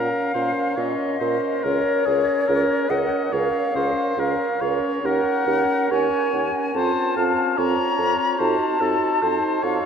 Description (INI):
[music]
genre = classical, slow romantic movement for wind quintet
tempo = 71 BPM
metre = 4/4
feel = rubato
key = Bb minor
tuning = A4 = 444 Hz
[part]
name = concert flute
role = melody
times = 0.0-9.9 s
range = Db5 to Bb5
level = -24 LUFS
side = left 4 dB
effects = none
[part]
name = warm oboe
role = second line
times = 0.0-9.9 s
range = Ab4 to F5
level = -27 LUFS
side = left 2 dB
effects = none
[part]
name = clear clarinet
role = accompaniment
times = 0.0-9.9 s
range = F4 to Bb4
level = -26 LUFS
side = right 6 dB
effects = none
[part]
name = warm French horn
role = accompaniment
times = 0.0-9.9 s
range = C4 to Eb4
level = -28 LUFS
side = left 1 dB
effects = none
[part]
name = dark bassoon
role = bass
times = 0.0-9.8 s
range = Db2 to Bb2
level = -26 LUFS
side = right 4 dB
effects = none
[sound]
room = wet cathedral reverb, RT60 6.6 s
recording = in a vast, echoing space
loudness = -19 LUFS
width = side -7 dB against mid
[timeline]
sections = 0.0-9.9 A section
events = none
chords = 0.0 Bbm; 1.6 Bbm/Db; 5.0 Ebm7; 6.8 F; 8.4 F7b9